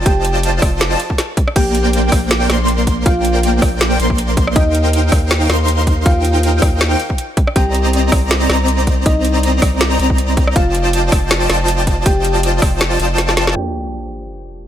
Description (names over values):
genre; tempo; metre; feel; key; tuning
future bass; 160 BPM; 4/4; swing 55% on 16ths, half-time; Bb major; A4 = 440 Hz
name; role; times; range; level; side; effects
airy dreamy lead; arpeggios; 0.0-13.5 s; G5 to C6; -24 LUFS; left 1 dB; chorus, sidechain pumping, digital delay
dense compressed supersaw; riff; 0.0-13.5 s; Bb3 to C6; -19 LUFS; equal; sidechain pumping
saturated sub bass; bass; 0.0-13.5 s; F1 to Eb2; -17 LUFS; equal; sidechain pumping
thumb-piano-like synth pluck; melody; 0.1-13.7 s; Eb4 to G5; -22 LUFS; left 1 dB; chorus, sidechain pumping, digital delay
electronic kick drum; drums; 0.1-12.7 s; none; -15 LUFS; equal; none
trap drum kit; drums; 0.1-13.5 s; crash cymbal, hi-hat, rim click, snare drum; -19 LUFS; equal; none
felt-muted upright piano; accompaniment; 13.5-14.7 s; F3 to G4; -27 LUFS; right 2 dB; sidechain pumping, digital delay
sub drop; sound effects; 13.6-14.7 s; none; -27 LUFS; equal; none
room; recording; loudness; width
light reverb, digital ambience; low-pass filter; -12 LUFS; side -10 dB against mid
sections
0.0-13.6 A section; 13.6-14.7 B section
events
drop 0.0-13.6; kick drops out 12.8-13.6; drum fill 13.3; band accent 13.5; impact 13.6-14.7; filter sweep 13.6-14.7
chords
0.0 F13; 1.6 Bb6; 4.6 Eb69; 7.6 Cm7; 10.6 F13; 13.6 Bb6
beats
| 0.06 0.43 0.81 1.18 | 1.56 1.93 2.31 2.68 | 3.06 3.43 3.81 4.18 | 4.56 4.93 5.31 5.68 | 6.06 6.43 6.81 7.18 | 7.56 7.93 8.31 8.68 | 9.06 9.43 9.81 10.18 | 10.56 10.93 11.31 11.68 | 12.06 12.43 12.81 13.18 | 13.56 13.93 14.31